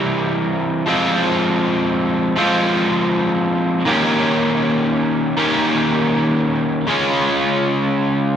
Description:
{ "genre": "rock", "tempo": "80 BPM", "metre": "4/4", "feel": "straight", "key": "F minor", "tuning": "A4 = 440 Hz", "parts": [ { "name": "cranked stack guitar", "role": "solo", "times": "0.0-8.4 s", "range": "C3 to Bb4", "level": "-15 LUFS", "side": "equal", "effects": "overdrive, analog delay" } ], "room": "wet large studio reverb, RT60 1.2 s, digital ambience", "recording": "none", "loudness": "-15 LUFS", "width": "side -9 dB against mid", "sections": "0.0-8.4 A section", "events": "none", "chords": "0.0 C7; 0.9 Fm; 3.9 Eb7; 6.9 Db" }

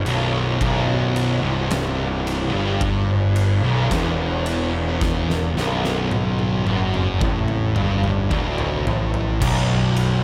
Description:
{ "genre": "stoner and doom metal", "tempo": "54 BPM", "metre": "4/4", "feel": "straight", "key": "B phrygian", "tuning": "A4 = 440 Hz", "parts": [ { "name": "overdriven semi-hollow guitar", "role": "riff", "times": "0.0-10.2 s", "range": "B1 to A2", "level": "-28 LUFS", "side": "equal", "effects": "none" }, { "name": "thick fuzz guitar", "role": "riff", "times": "0.0-10.2 s", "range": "B1 to A2", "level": "-27 LUFS", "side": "equal", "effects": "distortion" }, { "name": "thick fuzz guitar", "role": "riff", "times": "0.0-10.2 s", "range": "B1 to A2", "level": "-28 LUFS", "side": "equal", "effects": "distortion" }, { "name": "fuzz picked electric bass", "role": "bass", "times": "0.1-10.2 s", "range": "B0 to A1", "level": "-28 LUFS", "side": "equal", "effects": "overdrive" }, { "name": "oversized low-tuned drum kit", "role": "drums", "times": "0.1-10.2 s", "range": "crash cymbal, kick drum, ride cymbal, snare drum, toms", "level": "-28 LUFS", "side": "equal", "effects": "none" } ], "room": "light reverb, small room ambience", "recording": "none", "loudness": "-21 LUFS", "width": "mono", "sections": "0.0-9.4 A section", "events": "drum fill 5.0-9.4", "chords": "0.0 Bm; 9.4 N.C." }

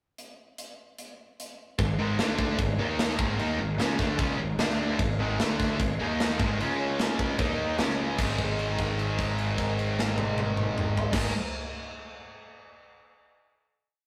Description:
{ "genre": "hard rock", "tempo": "150 BPM", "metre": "4/4", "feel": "straight", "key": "unclear", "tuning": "A4 = 441 Hz", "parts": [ { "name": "tight metal drum kit", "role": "drums", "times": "0.2-11.2 s", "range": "crash cymbal, hi-hat, kick drum, snare drum, toms", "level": "-32 LUFS", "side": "equal", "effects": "none" }, { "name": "sweeping resonant pad", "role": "sustained chords", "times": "1.8-11.3 s", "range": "G#3 to E5", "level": "-41 LUFS", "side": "equal", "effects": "none" }, { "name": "high-gain distorted guitar", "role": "riff", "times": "1.8-11.3 s", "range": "G#2 to D#4", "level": "-36 LUFS", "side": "equal", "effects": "distortion" }, { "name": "tight distorted guitar", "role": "riff", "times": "1.8-11.3 s", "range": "G#2 to D#4", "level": "-36 LUFS", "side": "equal", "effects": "distortion" }, { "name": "tight distorted guitar", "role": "riff", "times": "1.8-11.3 s", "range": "G#2 to D#4", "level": "-37 LUFS", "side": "equal", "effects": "distortion" }, { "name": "modern bright picked electric bass", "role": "bass", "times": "1.8-11.3 s", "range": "G#1 to D#2", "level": "-34 LUFS", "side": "equal", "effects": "none" } ], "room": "moderate stone room reverb, RT60 0.9 s", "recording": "rough rehearsal-room recording", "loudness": "-28 LUFS", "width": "mono", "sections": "0.2-1.8 pickup bar; 1.8-8.2 riff; 8.2-11.4 final chord", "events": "held note 8.2-11.1", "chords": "0.2 N.C.; 1.8 G#5; 2.2 D5; 2.6 G#5; 2.8 D#5; 3.2 G#5; 4.6 D5; 5.0 G#5; 5.4 D5; 5.8 G#5; 6.0 D#5; 6.4 G#5; 6.6 C#5; 7.4 D#5; 7.8 C#5; 8.2 G#5" }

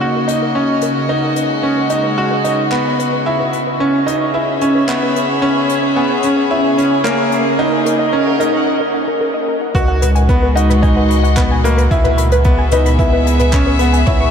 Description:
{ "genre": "piano and strings electronica", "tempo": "111 BPM", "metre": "4/4", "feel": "straight", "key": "unclear", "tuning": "A4 = 441 Hz", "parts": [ { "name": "warm chamber string section", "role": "sustained chords", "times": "0.0-14.3 s", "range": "C#3 to F#5", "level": "-19 LUFS", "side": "left 1 dB", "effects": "sidechain pumping" }, { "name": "warbly dusty pluck", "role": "arpeggios", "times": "0.0-14.3 s", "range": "A#4 to D#6", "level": "-22 LUFS", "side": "left 2 dB", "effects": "chorus, sidechain pumping, diffuse ambient delay" }, { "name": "bright concert grand piano", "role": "riff", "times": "0.0-14.3 s", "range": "A#3 to F#4", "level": "-16 LUFS", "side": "right 1 dB", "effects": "diffuse ambient delay" }, { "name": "jazz brush drum kit", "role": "drums", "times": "0.3-14.2 s", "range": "handclaps, hi-hat, toms", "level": "-27 LUFS", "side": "right 1 dB", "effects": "none" }, { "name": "warm sub bass", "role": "bass", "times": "9.7-14.3 s", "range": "C#2", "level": "-14 LUFS", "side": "equal", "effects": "sidechain pumping" }, { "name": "electronic kick drum", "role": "drums", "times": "9.7-14.2 s", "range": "none", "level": "-15 LUFS", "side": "equal", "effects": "none" } ], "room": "wet huge ambient reverb, RT60 8.4 s", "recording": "dreamy mix soaked in reverb", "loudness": "-12 LUFS", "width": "side -7 dB against mid", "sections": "0.0-9.7 A section; 9.7-14.3 B section", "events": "build-up 0.0-9.7; filter sweep on synth arpeggio sound 0.0-9.7; break 8.7-9.7; drop 9.7-14.3", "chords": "0.0 D#m7/C#; 1.1 B6/C#; 3.3 E/C#; 5.4 C#m; 7.6 D#m7/C#; 9.7 B6/C#; 11.9 E/C#" }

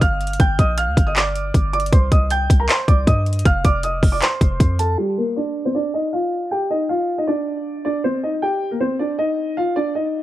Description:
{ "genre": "hip hop, trap", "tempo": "157 BPM", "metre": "4/4", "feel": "half-time", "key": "unclear", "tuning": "A4 = 440 Hz", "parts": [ { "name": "dark grand piano", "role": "melody", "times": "0.0-10.2 s", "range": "G3 to G6", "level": "-20 LUFS", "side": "equal", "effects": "low-pass filter" }, { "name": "warm 808-style bass", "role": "bass", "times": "0.0-5.0 s", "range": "F1 to G2", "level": "-20 LUFS", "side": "equal", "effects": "none" }, { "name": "trap drum kit", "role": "drums", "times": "0.0-4.9 s", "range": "handclaps, hi-hat, kick drum", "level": "-16 LUFS", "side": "equal", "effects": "none" } ], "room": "light reverb", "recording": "none", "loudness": "-16 LUFS", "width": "side -14 dB against mid", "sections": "0.0-5.0 A section; 5.0-10.2 B section", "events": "filter sweep on grand piano 5.0-10.2", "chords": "0.0 Gm; 1.9 Cm; 3.5 F5; 5.0 N.C.; 8.0 Cm; 9.6 N.C." }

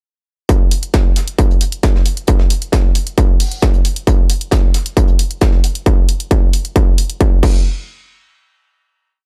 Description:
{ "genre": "techno", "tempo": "134 BPM", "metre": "4/4", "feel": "straight", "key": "none", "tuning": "none", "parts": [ { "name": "electronic kick drum", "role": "drums", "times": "0.5-7.5 s", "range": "none", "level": "-14 LUFS", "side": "equal", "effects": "distortion" }, { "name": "punchy analog drum machine", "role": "drums", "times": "0.5-7.5 s", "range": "crash cymbal, hi-hat", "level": "-26 LUFS", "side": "equal", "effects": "overdrive, sidechain pumping on hats, sidechain pumping on cymbals" }, { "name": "soft brush drum kit", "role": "drums", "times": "0.5-5.7 s", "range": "hi-hat, snare drum", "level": "-31 LUFS", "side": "equal", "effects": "sidechain pumping on hats, high-pass filter on hats, high-pass filter on snare, high-pass filter on room" } ], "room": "little or no reverb", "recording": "dry, gritty hardware recording", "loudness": "-14 LUFS", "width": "mono", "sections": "0.5-7.7 groove; 7.7-9.3 final hit", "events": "none", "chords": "none" }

